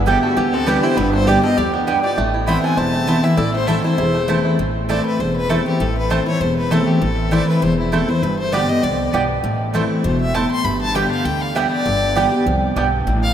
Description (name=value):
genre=bluegrass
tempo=198 BPM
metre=4/4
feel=swing 54% on 8ths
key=A minor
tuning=A4 = 440 Hz
part: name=bluegrass banjo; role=melody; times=0.0-12.8 s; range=A3 to A4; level=-28 LUFS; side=right 3 dB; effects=none
part: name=picked steel-string acoustic guitar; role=accompaniment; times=0.0-13.3 s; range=E2 to G4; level=-19 LUFS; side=left 1 dB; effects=none
part: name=upright bass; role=bass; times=0.0-13.3 s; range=E1 to D2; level=-23 LUFS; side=equal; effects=none
part: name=clear fiddle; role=melody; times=0.1-13.3 s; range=E4 to C6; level=-23 LUFS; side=left 3 dB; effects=none
part: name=lap resonator guitar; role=second line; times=0.1-4.5 s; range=A3 to E5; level=-26 LUFS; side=left 1 dB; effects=none
part: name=mandolin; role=stabs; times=0.1-12.9 s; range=A3 to A5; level=-23 LUFS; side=right 5 dB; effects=slapback echo
room=wet cathedral reverb, RT60 6.0 s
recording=in a vast, echoing space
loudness=-15 LUFS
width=side -9 dB against mid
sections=0.0-4.6 A section; 4.6-13.3 B section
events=fiddle solo 4.6-13.3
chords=0.0 G; 2.2 Amadd9; 3.4 Am; 8.2 G; 9.4 Am; 10.6 G